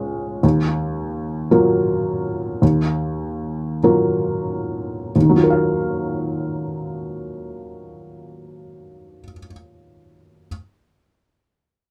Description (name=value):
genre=classical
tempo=44-57 BPM (dotted quarters)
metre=6/8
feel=rubato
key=Eb minor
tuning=A4 = 441 Hz
part: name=felt-muted upright piano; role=accompaniment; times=0.0-10.5 s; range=Db2 to F5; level=-21 LUFS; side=equal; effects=none
room=moderate booth ambience, RT60 0.2 s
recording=close, detailed microphones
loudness=-20 LUFS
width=mono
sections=0.0-5.1 A section; 5.1-10.5 B section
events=slowing down 0.0-5.1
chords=0.4 Ebmadd9